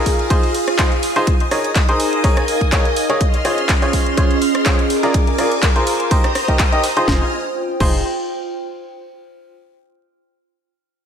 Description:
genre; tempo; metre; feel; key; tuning
piano house; 124 BPM; 4/4; swing 54% on 16ths; F minor; A4 = 438 Hz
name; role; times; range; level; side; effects
string machine, violins; sustained chords; 0.0-7.3 s; Ab4 to F6; -23 LUFS; equal; ensemble chorus, sidechain pumping
bright grand piano; riff; 0.0-8.0 s; Eb4 to Eb5; -20 LUFS; equal; sidechain pumping, low-pass filter, ping-pong delay
warbly tape-like pad; texture; 0.0-9.0 s; Db4 to C6; -23 LUFS; right 2 dB; chorus, built-in reverb, sidechain pumping
breakbeat sampler-style drum kit; drums; 0.1-7.1 s; hi-hat, snare drum; -33 LUFS; equal; none
electronic kick drum; drums; 0.1-7.9 s; none; -17 LUFS; equal; overdrive
house drum kit; drums; 0.1-7.9 s; crash cymbal, handclaps, hi-hat, rim click, snare drum; -23 LUFS; equal; overdrive
organ-like FM bass; bass; 7.1-8.0 s; F1; -24 LUFS; equal; sidechain pumping
room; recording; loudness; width
moderate plate reverb, RT60 2.2 s; dreamy mix soaked in reverb; -14 LUFS; side -8 dB against mid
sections
0.0-7.1 A section; 7.1-9.0 B section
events
filter sweep on grand piano 0.0-7.1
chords
0.0 Fm7; 1.3 Eb7sus4; 3.2 Dbmaj7; 4.9 Bb7; 6.1 Cm7; 7.1 Fm7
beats
0.30 0.79 | 1.27 1.75 2.24 2.72 | 3.21 3.69 4.17 4.66 | 5.14 5.63 6.11 6.59 | 7.08 7.56 8.04 8.53

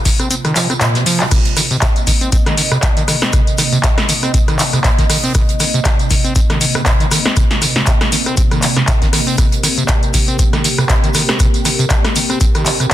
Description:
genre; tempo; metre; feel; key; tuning
acid house; 119 BPM; 4/4; swing 56% on 16ths; unclear; A4 = 437 Hz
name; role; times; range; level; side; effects
dark analog pad; sustained chords; 0.0-12.9 s; C3 to Eb5; -21 LUFS; right 2 dB; chorus, phaser, sidechain pumping
soft brush drum kit; drums; 0.0-12.9 s; hi-hat, shaker, snare drum; -28 LUFS; right 2 dB; none
overdriven acid bass; riff; 0.1-12.9 s; Bb2 to C4; -20 LUFS; equal; distortion, sidechain pumping, tape echo
electro analog drum machine; drums; 0.1-12.9 s; crash cymbal, handclaps, hi-hat, rim click, snare drum, tambourine; -16 LUFS; equal; none
electronic kick drum; drums; 0.1-12.9 s; none; -14 LUFS; equal; none
room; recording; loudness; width
small room ambience; dense, heavily limited modern master; -11 LUFS; side -13 dB against mid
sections
0.0-1.3 A section; 1.3-12.9 B section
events
kick drops out 0.3-1.3; drum fill 0.8-1.3; drop 1.3-12.9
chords
0.0 C7(no3); 1.3 Cm7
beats
0.31 0.81 | 1.31 1.82 2.32 2.83 | 3.33 3.84 4.34 4.84 | 5.35 5.85 6.36 6.86 | 7.37 7.87 8.37 8.88 | 9.38 9.89 10.39 10.89 | 11.40 11.90 12.41 12.91

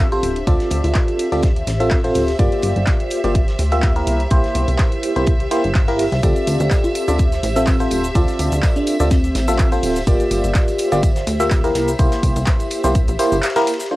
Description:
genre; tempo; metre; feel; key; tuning
piano house; 125 BPM; 4/4; swing 54% on 16ths; D minor; A4 = 444 Hz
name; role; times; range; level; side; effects
dark studio violin section; sustained chords; 0.0-14.0 s; C4 to E5; -30 LUFS; equal; sidechain pumping, low-pass filter, cassette tape
barking FM electric piano; riff; 0.0-14.0 s; A3 to E5; -20 LUFS; equal; chorus, phaser, tremolo, sidechain pumping, cassette tape, tape echo
plucky analog bass; bass; 0.0-13.4 s; D1 to D2; -21 LUFS; equal; transformer saturation, sidechain pumping
ethereal airy pad; texture; 0.0-14.0 s; D4 to E5; -28 LUFS; equal; ensemble chorus, built-in reverb, phaser, sidechain pumping, cassette tape
bell-like FM electric piano; melody; 0.1-1.3, 6.2-9.6 s; C4 to G4; -24 LUFS; equal; chorus, tremolo, cassette tape, tape echo
punchy analog drum machine; drums; 0.1-13.9 s; handclaps, hi-hat, shaker; -27 LUFS; equal; cassette tape
damped 70s drum kit; drums; 0.2-13.9 s; hi-hat, ride cymbal, snare drum; -38 LUFS; left 1 dB; none
electronic kick drum; drums; 0.5-13.1 s; none; -17 LUFS; equal; cassette tape
tambourine; percussion; 6.2-13.9 s; none; -37 LUFS; left 1 dB; none
room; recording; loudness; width
moderate booth ambience, RT60 0.2 s; home recording on cassette; -15 LUFS; side -18 dB against mid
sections
0.0-13.9 A section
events
band accent 13.4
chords
0.0 Dm7; 2.4 Gm7; 4.1 C7; 6.2 Dm7; 10.1 Gm7; 11.8 C7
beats
| 0.47 0.95 1.43 1.91 | 2.39 2.87 3.35 3.83 | 4.31 4.79 5.27 5.75 | 6.23 6.71 7.19 7.67 | 8.15 8.63 9.11 9.59 | 10.07 10.55 11.03 11.51 | 11.99 12.47 12.95 13.43 | 13.91

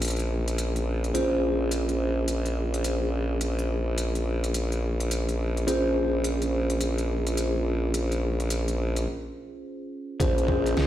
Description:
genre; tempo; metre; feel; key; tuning
glitch hop; 106 BPM; 4/4; swing 62% on 16ths; Bb minor; A4 = 439 Hz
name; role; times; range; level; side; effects
mellow tine electric piano; stabs; 0.0-10.9 s; Db4 to C5; -29 LUFS; equal; phaser, sidechain pumping, ping-pong delay
formant-sweep wobble bass; bass; 0.0-10.9 s; Bb1 to Db2; -26 LUFS; equal; chorus
pop drum kit; drums; 0.0-10.9 s; hi-hat, snare drum; -34 LUFS; equal; studio reverb
electronic kick drum; drums; 10.2-10.6 s; none; -26 LUFS; equal; studio reverb
room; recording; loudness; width
light reverb, digital ambience; played on a big sound system in a bare room, stone room reverb; -24 LUFS; side -12 dB against mid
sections
0.0-10.2 A section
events
break 9.1-10.2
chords
0.0 Bbm7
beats
0.01 0.58 | 1.15 1.71 2.28 2.85 | 3.41 3.98 4.54 5.11 | 5.68 6.24 6.81 7.37 | 7.94 8.51 9.07 9.64 | 10.20 10.77

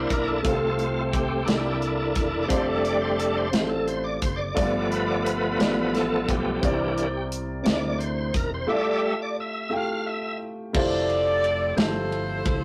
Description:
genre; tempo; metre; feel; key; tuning
slow gospel; 58 BPM (dotted quarters); 6/8; straight; F major; A4 = 440 Hz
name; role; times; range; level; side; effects
dark upright piano; accompaniment; 0.0-12.6 s; G2 to G5; -31 LUFS; equal; none
bright tonewheel organ; sustained chords; 0.0-10.4 s; E3 to F5; -28 LUFS; equal; fast rotary speaker, overdrive, chorus vibrato
modern bright fingered electric bass; bass; 0.0-12.6 s; E1 to D2; -35 LUFS; equal; none
modern studio drum kit; drums; 0.1-12.6 s; crash cymbal, hi-hat, kick drum, ride cymbal, snare drum; -30 LUFS; equal; none
warm saxophone section; melody; 10.8-12.6 s; E4 to D5; -27 LUFS; equal; none
room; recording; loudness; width
moderate studio reverb, RT60 0.6 s; rough rehearsal-room recording, warm saturation; -25 LUFS; mono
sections
0.0-10.7 A section; 10.7-12.6 B section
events
tonewheel organ solo 0.0-10.7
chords
0.4 F/C; 1.5 C13; 2.5 F6; 4.6 G7; 6.6 C9; 8.7 Fmaj9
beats
| 0.45 1.48 | 2.51 3.54 | 4.57 5.59 | 6.62 7.65 | 8.68 9.71 | 10.74 11.76

